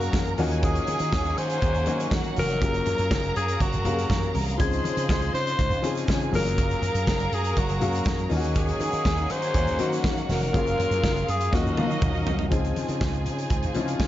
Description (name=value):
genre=disco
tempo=121 BPM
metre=4/4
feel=straight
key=Eb dorian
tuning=A4 = 440 Hz
part: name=growling alto saxophone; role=melody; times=0.0-12.3 s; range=Gb4 to C5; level=-28 LUFS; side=left 2 dB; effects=none
part: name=warm studio violin section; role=second line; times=0.0-14.1 s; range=Eb4 to C6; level=-33 LUFS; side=right 3 dB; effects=none
part: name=warm baby grand piano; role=accompaniment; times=0.0-14.1 s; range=F3 to F5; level=-30 LUFS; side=left 4 dB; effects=none
part: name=rich studio string section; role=sustained chords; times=0.0-14.1 s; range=Db3 to F5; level=-35 LUFS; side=right 1 dB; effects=none
part: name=slap bass with an envelope filter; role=bass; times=0.0-14.1 s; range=F1 to Eb3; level=-28 LUFS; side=right 1 dB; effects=none
part: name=modern studio drum kit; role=drums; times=0.0-14.1 s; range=hi-hat, kick drum, snare drum, toms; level=-28 LUFS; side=right 1 dB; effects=none
part: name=egg shaker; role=percussion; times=0.0-14.1 s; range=none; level=-51 LUFS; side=right 16 dB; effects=none
part: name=congas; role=percussion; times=0.2-14.1 s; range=none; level=-35 LUFS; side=left 2 dB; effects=none
room=light reverb, small room ambience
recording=nothing above 7.6 kHz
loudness=-22 LUFS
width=side -13 dB against mid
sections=0.0-12.5 A section; 12.5-14.1 B section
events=drum fill 11.5-12.5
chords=0.4 Ebm7; 2.6 Gbmaj9; 4.6 Dbmaj9; 6.3 Gbmaj9; 8.3 Ebm7; 10.5 Gbmaj9; 11.5 Ebm9; 12.5 Dbmaj9